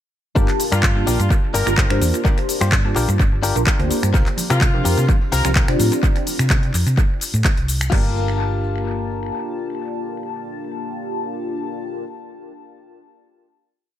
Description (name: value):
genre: filtered disco house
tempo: 127 BPM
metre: 4/4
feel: straight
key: G minor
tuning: A4 = 440 Hz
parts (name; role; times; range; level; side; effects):
- funky polysynth comp; accompaniment; 0.4-12.1 s; Bb3 to A5; -25 LUFS; equal; chorus, phaser, sidechain pumping, tape echo
- direct-recorded clean electric guitar; riff; 0.4-12.1 s; C4 to C5; -28 LUFS; left 6 dB; vintage 12-bit sampler grit, sidechain pumping, tape echo
- hollow-body short-scale fingered electric bass; bass; 0.4-9.3 s; G1 to C3; -20 LUFS; equal; sidechain pumping
- electronic kick drum; drums; 0.4-8.0 s; none; -18 LUFS; equal; none
- house drum kit; drums; 0.4-8.0 s; crash cymbal, finger snaps, handclaps, hi-hat, shaker; -24 LUFS; left 1 dB; sidechain pumping on perc, sidechain pumping on hats, sidechain pumping on cymbals, tape echo
- bright horn section; melody; 0.7-5.5 s; F4 to Bb4; -28 LUFS; left 1 dB; sidechain pumping, tape echo
- tambourine and congas; percussion; 4.1-6.0 s; none; -32 LUFS; right 4 dB; sidechain pumping on perc, tape echo
room: digital ambience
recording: echo-heavy mix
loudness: -16 LUFS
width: side -11 dB against mid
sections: 0.4-7.9 drop; 7.9-11.7 final chord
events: drop 0.4-7.9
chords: 0.4 Gm7; 4.1 C7sus4; 7.9 Gm7